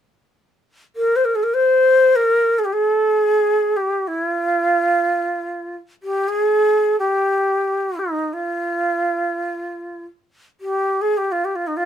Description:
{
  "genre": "persian",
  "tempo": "free time",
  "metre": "none",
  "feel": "none",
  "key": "unclear",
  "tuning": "A4 = 439 Hz",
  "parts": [
    { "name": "breathy bright ney", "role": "solo", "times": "1.0-11.9 s", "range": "Eb4 to C5", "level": "-17 LUFS", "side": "equal", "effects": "none" }
  ],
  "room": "light reverb",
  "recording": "minimal, uncompressed stereo recording",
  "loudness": "-16 LUFS",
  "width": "side -9 dB against mid",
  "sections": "0.7-11.9 A section",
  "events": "none",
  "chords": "none"
}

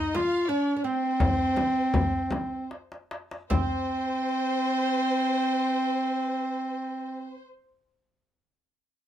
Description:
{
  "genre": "Arabic maqam ensemble",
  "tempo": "71-88 BPM",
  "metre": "3/4",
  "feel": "straight",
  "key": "unclear",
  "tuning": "A4 = 439 Hz",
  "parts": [
    { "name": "clear clarinet", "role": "melody", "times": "0.0-7.4 s", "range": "C4 to F4", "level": "-26 LUFS", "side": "right 1 dB", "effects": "none" },
    { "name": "oud", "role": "second line", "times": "0.0-7.4 s", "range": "C4 to F4", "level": "-37 LUFS", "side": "right 5 dB", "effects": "none" },
    { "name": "warm symphonic violin section", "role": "second line", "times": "0.0-7.4 s", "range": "C5 to F5", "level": "-34 LUFS", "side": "equal", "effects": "none" },
    { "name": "frame drum", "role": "percussion", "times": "0.1-3.9 s", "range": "none", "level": "-29 LUFS", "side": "left 2 dB", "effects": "none" },
    { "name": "darbuka", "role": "percussion", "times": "0.2-3.9 s", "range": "none", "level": "-32 LUFS", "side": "left 1 dB", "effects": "none" }
  ],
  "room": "light reverb",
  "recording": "close, detailed microphones",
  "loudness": "-24 LUFS",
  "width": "side -11 dB against mid",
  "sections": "0.0-3.5 A section; 3.5-8.6 B section",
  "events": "slowing down 0.0-3.5; drum fill 2.7-3.5",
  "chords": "none"
}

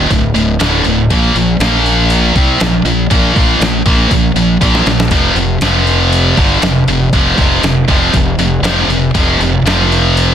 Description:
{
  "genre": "heavy metal",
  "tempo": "119 BPM",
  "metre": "4/4",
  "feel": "straight",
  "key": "unclear",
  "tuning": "A4 = 437 Hz",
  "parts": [
    { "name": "heavy high-gain guitar", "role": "riff", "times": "0.0-10.3 s", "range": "D2 to C4", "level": "-11 LUFS", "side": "equal", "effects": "distortion" },
    { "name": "fuzz fingered electric bass", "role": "bass", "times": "0.0-10.3 s", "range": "D1 to C2", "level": "-15 LUFS", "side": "equal", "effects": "overdrive" },
    { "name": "dusty soul sampler-style drum kit", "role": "drums", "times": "0.1-10.3 s", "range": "hi-hat, kick drum, snare drum", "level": "-16 LUFS", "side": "equal", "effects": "none" }
  ],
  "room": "light reverb",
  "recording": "dense, heavily limited modern master",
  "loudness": "-9 LUFS",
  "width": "side -9 dB against mid",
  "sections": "0.0-10.3 A section",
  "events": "drum fill 4.6-5.1",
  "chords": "0.0 D5; 1.1 Bb5; 5.1 F5"
}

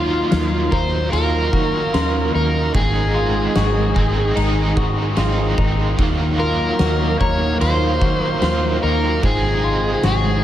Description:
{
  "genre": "dream pop",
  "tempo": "74 BPM",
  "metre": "4/4",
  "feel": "straight",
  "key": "Eb dorian",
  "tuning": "A4 = 439 Hz",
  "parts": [
    { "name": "overdriven slide guitar", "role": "melody", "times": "0.0-10.4 s", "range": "F4 to Db5", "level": "-22 LUFS", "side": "equal", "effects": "tape echo" },
    { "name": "overdriven electric guitar", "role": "accompaniment", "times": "0.0-10.4 s", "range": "Ab2 to F4", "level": "-25 LUFS", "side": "right 2 dB", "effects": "tremolo, wide subtle chorus, tape echo" },
    { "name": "warm analog pad", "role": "sustained chords", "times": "0.0-10.4 s", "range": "C3 to F5", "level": "-24 LUFS", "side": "right 1 dB", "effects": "chorus" },
    { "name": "semi-hollow electric guitar", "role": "arpeggios", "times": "0.0-10.4 s", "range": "Gb3 to Bb4", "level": "-26 LUFS", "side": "left 4 dB", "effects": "wide subtle chorus, tape echo" },
    { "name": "vintage muted fingered electric bass", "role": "bass", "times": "0.0-10.4 s", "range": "Ab1 to Eb3", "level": "-21 LUFS", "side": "equal", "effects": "none" },
    { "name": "glassy synth bell", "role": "texture", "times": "0.0-10.4 s", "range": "Db4 to C5", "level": "-33 LUFS", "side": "right 2 dB", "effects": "none" },
    { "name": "oversized low-tuned drum kit", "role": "drums", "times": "0.3-10.2 s", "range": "kick drum, ride cymbal, snare drum, tambourine", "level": "-23 LUFS", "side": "equal", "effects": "none" }
  ],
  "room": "moderate spring reverb, RT60 1.9 s, small room ambience",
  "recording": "echo-heavy mix",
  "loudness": "-16 LUFS",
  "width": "side -12 dB against mid",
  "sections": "0.0-10.4 A section",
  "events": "none",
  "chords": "0.0 Ebmadd9; 2.7 Ab; 6.0 Ebmadd9; 9.2 Ab"
}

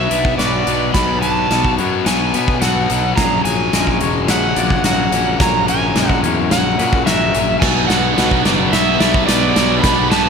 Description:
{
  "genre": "post-rock",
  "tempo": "108 BPM",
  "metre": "4/4",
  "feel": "straight",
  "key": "B dorian",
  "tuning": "A4 = 440 Hz",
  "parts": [
    { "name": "overdriven slide guitar", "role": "melody", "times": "0.0-10.3 s", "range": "D5 to B5", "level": "-19 LUFS", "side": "right 4 dB", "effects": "digital delay" },
    { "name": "clear studio string section", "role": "sustained chords", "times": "0.0-10.3 s", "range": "A#3 to F#5", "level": "-29 LUFS", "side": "right 1 dB", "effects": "none" },
    { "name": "twangy electric guitar", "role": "arpeggios", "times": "0.0-7.6 s", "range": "A#2 to F#4", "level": "-28 LUFS", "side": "left 4 dB", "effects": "digital delay" },
    { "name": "twangy electric guitar", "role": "arpeggios", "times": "0.0-10.3 s", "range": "G#4 to E5", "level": "-28 LUFS", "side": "right 4 dB", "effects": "lush chorus, digital delay" },
    { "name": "distorted electric guitar", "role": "riff", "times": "0.0-10.3 s", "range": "F#2 to B3", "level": "-19 LUFS", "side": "left 11 dB", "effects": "distortion" },
    { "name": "fuzz fingered electric bass", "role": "bass", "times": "0.0-10.3 s", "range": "E1 to B2", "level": "-21 LUFS", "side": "equal", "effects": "overdrive" },
    { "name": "big rock drum kit", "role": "drums", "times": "0.1-10.2 s", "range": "crash cymbal, hi-hat, kick drum, snare drum", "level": "-18 LUFS", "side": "equal", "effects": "none" },
    { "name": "distorted electric guitar", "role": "riff", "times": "7.6-10.3 s", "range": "B2 to D4", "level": "-19 LUFS", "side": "right 14 dB", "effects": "overdrive" }
  ],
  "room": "moderate large studio reverb, RT60 1.0 s, studio reverb",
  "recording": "none",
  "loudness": "-13 LUFS",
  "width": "side -6 dB against mid",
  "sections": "0.0-10.3 A section",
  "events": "build-up 0.0-10.3; drum fill 0.0-10.3",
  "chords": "0.0 Bm; 3.2 F#add9; 7.6 Bm"
}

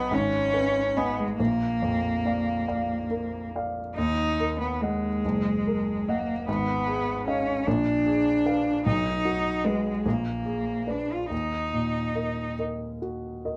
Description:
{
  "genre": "classical, romantic duo for cello and grand piano",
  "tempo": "46-51 BPM (dotted quarters)",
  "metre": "6/8",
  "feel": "rubato",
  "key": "Eb minor",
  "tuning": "A4 = 440 Hz",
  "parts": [
    { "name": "clear cello", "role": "melody", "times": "0.0-12.6 s", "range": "Ab3 to F4", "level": "-29 LUFS", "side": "equal", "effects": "none" },
    { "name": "clear grand piano", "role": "accompaniment", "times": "0.0-13.6 s", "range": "Gb1 to A#5", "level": "-31 LUFS", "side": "equal", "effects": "none" }
  ],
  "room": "light reverb",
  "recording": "dark, warm production",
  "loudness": "-27 LUFS",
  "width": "mono",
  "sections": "0.0-13.6 A section",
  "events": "none",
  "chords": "0.1 Abm; 1.4 Bb; 4.0 Ebm; 5.2 Ebm/Gb; 6.5 Fm7b5/Ab; 7.7 Bb7b9; 8.8 B; 10.0 Bb7b9; 11.3 Ebm"
}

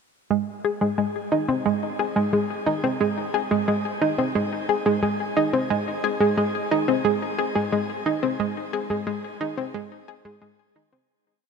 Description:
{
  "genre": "ambient",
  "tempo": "89 BPM",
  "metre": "4/4",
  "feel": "straight",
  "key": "Ab major",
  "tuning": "A4 = 441 Hz",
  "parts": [
    { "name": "analog pluck", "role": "solo", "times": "0.3-11.0 s", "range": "Ab3 to Ab4", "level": "-22 LUFS", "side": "equal", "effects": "chorus, ping-pong delay" }
  ],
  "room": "wet shimmer reverb, RT60 7.0 s",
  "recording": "none",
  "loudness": "-22 LUFS",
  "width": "side -5 dB against mid",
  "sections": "0.3-11.1 A section",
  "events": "fade-out 7.5-11.1",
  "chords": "none"
}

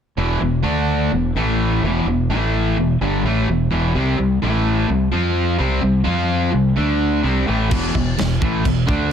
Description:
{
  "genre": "heavy metal",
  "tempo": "128 BPM",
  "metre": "4/4",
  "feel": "straight",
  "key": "E phrygian",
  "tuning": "A4 = 440 Hz",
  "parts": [
    { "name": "distorted electric guitar", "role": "riff", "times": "0.2-9.1 s", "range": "E2 to F4", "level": "-18 LUFS", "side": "left 1 dB", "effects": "distortion" },
    { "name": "growling fingered electric bass", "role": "bass", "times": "0.2-9.1 s", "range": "E1 to F2", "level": "-21 LUFS", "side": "equal", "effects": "overdrive" },
    { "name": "modern studio drum kit", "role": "drums", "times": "7.7-9.0 s", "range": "china cymbal, crash cymbal, kick drum, snare drum", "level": "-21 LUFS", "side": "equal", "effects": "none" }
  ],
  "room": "studio ambience",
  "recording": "dense, heavily limited modern master",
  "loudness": "-16 LUFS",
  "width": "side -8 dB against mid",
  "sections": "0.2-7.7 A section; 7.7-9.1 B section",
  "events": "none",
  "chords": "0.2 E5; 0.7 D5; 1.1 E5; 1.4 A5; 1.8 E5; 2.3 A5; 2.8 Em; 4.0 C5; 4.4 A5; 4.9 C5; 5.1 F5; 5.6 C5; 6.1 F5; 6.5 C5; 6.8 D5; 7.2 C5; 7.7 E5"
}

